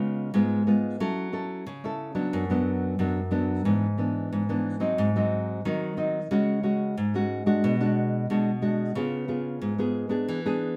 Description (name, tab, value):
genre	samba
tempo	90 BPM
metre	4/4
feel	straight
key	unclear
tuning	A4 = 441 Hz
part	nylon-string guitar	solo	0.0-10.8 s	F#2 to A4	-27 LUFS	equal	none
room	wet studio reverb, RT60 0.7 s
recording	band playing live in one room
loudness	-27 LUFS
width	mono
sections	0.0-10.8 A section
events	none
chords	0.0 C#7; 1.0 F#m7; 2.3 Bm/F#; 3.7 E7/G#; 5.0 G#7; 6.3 C#sus4; 7.6 G#m7b5/B; 9.0 C#7